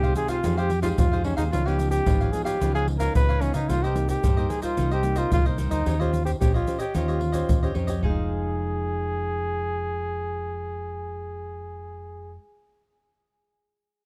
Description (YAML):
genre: samba and choro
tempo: 111 BPM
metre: 4/4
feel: straight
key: F minor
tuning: A4 = 440 Hz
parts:
  - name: breathy trumpet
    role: melody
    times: 0.0-12.4 s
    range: Db4 to Cb5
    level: -30 LUFS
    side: equal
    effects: none
  - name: cavaquinho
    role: accompaniment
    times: 0.0-12.4 s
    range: Eb4 to F5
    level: -38 LUFS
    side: equal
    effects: none
  - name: nylon-string guitar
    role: accompaniment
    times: 0.0-12.5 s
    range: G2 to C5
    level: -34 LUFS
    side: equal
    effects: none
  - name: mellow fretless electric bass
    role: bass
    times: 0.0-12.4 s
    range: F1 to Db3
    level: -30 LUFS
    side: equal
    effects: analog chorus
  - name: egg shaker, pandeiro and surdo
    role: percussion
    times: 0.0-8.2 s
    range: none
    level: -29 LUFS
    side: equal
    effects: none
room: little or no reverb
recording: dry, close 1970s-style studio recording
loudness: -25 LUFS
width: mono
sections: 0.0-8.0 A section; 8.0-12.4 B section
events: none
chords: 0.0 Fm9; 1.5 Db9; 3.7 Cm7; 5.9 Eb13; 8.0 Fm7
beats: 0.44 0.98 | 1.53 2.07 2.61 3.15 | 3.69 4.24 4.78 5.32 | 5.86 6.40 6.95 7.49 | 8.03 8.57 9.11 9.66 | 10.20 10.74 11.28 11.82